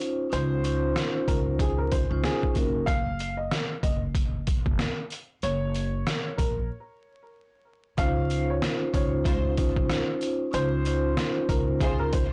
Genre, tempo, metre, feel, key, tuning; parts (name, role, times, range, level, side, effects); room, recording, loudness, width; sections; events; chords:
hip hop, boom-bap hip-hop; 94 BPM; 4/4; swing 58% on 16ths; Db major; A4 = 440 Hz
vibraphone with soft mallets; accompaniment; 0.0-2.9, 8.0-12.2 s; Db4 to C5; -31 LUFS; equal; cassette tape
trip hop sampler-style drum kit; drums; 0.0-12.3 s; hi-hat, kick drum, rim click, snare drum; -30 LUFS; equal
sleigh bells; percussion; 0.0-12.3 s; -49 LUFS; equal
dark upright piano; melody; 0.3-12.3 s; Ab4 to F5; -35 LUFS; equal; tape echo
upright bass; bass; 0.3-12.3 s; Gb1 to Db2; -32 LUFS; equal; transformer saturation
warm studio string section; stabs; 9.3-12.1 s; Ab3 to C5; -38 LUFS; equal; tape echo
light reverb; blown-out, overdriven recording, vinyl crackle, overdrive, nothing above 10.8 kHz; -27 LUFS; mono
0.0-8.0 A section; 8.0-12.3 B section
break 2.9-8.0
0.0 Dbmaj9; 2.6 N.C.; 8.0 Dbmaj9